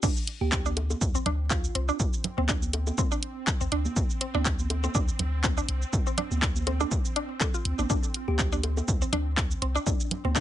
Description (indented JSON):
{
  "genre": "minimal techno",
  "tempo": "122 BPM",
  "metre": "4/4",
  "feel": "swing 55% on 16ths",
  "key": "D minor",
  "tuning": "A4 = 439 Hz",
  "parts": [
    { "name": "mallet-like synth pluck", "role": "riff", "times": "0.0-10.4 s", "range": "C4 to A4", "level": "-31 LUFS", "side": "equal", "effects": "chorus, phaser, sidechain pumping, ping-pong delay" },
    { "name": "punchy sub bass", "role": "bass", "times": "0.0-10.4 s", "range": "A1 to D2", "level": "-29 LUFS", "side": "equal", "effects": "sidechain pumping, high-pass filter" },
    { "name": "electronic kick drum", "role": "drums", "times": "0.0-10.4 s", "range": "none", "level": "-28 LUFS", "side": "equal", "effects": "high-pass filter on kick" },
    { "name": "garage drum kit", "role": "drums", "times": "0.0-10.4 s", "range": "crash cymbal, handclaps, hi-hat, shaker", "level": "-30 LUFS", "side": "equal", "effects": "none" },
    { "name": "swarming drone", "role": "texture", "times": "1.0-10.4 s", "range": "C4", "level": "-41 LUFS", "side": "right 4 dB", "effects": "built-in reverb, sidechain pumping" },
    { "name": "thumb-piano-like synth pluck", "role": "melody", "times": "0.4-1.9, 8.3-10.0 s", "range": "D4 to G4", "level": "-38 LUFS", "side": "equal", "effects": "chorus, phaser, digital delay" },
    { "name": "congas and bongos", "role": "percussion", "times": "0.4-10.3 s", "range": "none", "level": "-36 LUFS", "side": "right 3 dB", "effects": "overdrive, digital delay" }
  ],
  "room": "little or no reverb",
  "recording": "high-pass filter, nothing above 10.5 kHz",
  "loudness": "-25 LUFS",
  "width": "side -12 dB against mid",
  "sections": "0.0-10.4 A section",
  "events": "drop 0.0-10.4",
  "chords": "0.0 D7(no3)"
}